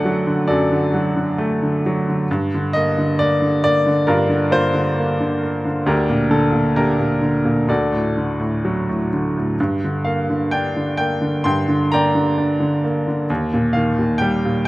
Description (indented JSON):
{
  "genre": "classical, lyrical solo piano",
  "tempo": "66 BPM",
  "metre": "4/4",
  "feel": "rubato",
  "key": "G minor",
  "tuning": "A4 = 440 Hz",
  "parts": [
    { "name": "bright baby grand piano", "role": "solo", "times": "0.0-14.7 s", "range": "D2 to C6", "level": "-16 LUFS", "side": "equal", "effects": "none" }
  ],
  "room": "moderate recital hall reverb, RT60 1.6 s",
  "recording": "close, detailed microphones",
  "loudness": "-16 LUFS",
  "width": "side -18 dB against mid",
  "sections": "0.0-14.7 A section",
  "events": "none",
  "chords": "0.0 D/F#; 2.3 Gm7; 5.9 Gm/D; 7.7 D; 9.6 Gm; 13.3 Ebadd9",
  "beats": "0.47 1.38 | 2.28 3.19 4.08 4.97 | 5.87 6.77 7.69 8.64 | 9.58 10.52 11.46 12.39 | 13.30 14.20"
}